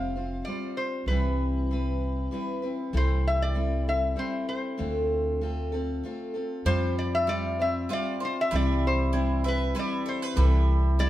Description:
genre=acoustic folk duo or small band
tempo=97 BPM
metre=3/4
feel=straight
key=unclear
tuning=A4 = 445 Hz
part: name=metal-body resonator slide guitar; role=melody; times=0.0-11.1 s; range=B4 to F5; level=-30 LUFS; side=left 1 dB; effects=none
part: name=picked steel-string acoustic guitar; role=accompaniment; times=0.0-11.1 s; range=C3 to C5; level=-30 LUFS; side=left 1 dB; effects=none
part: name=upright bass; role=bass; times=0.0-11.1 s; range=F1 to F2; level=-26 LUFS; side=equal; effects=none
part: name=bowl-back mandolin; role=arpeggios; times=6.7-11.1 s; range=G3 to F5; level=-34 LUFS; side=right 4 dB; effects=none
room=moderate stone room reverb, RT60 1.1 s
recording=band playing live in one room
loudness=-25 LUFS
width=side -14 dB against mid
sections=0.0-6.7 A section; 6.7-11.1 B section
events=resonator guitar played with a steel bar solo 6.7-11.1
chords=0.0 Fsus2; 1.1 Cmaj7; 2.9 Am7/C; 4.8 Dm7; 6.7 Fsus2; 8.5 Cmaj7; 10.4 Am7/C

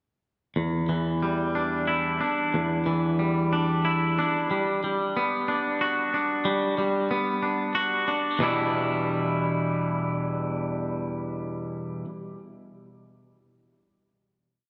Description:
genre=rock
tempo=92 BPM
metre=3/4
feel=straight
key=E minor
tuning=A4 = 441 Hz
part: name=twangy electric guitar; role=solo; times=0.6-12.1 s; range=E2 to F#4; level=-26 LUFS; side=equal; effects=analog delay
room=wet lush hall reverb, RT60 2.8 s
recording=big arena sound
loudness=-26 LUFS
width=mono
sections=0.6-8.4 A section; 8.4-12.3 final chord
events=none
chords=0.6 Em7; 4.5 Gmaj7; 8.4 Em7

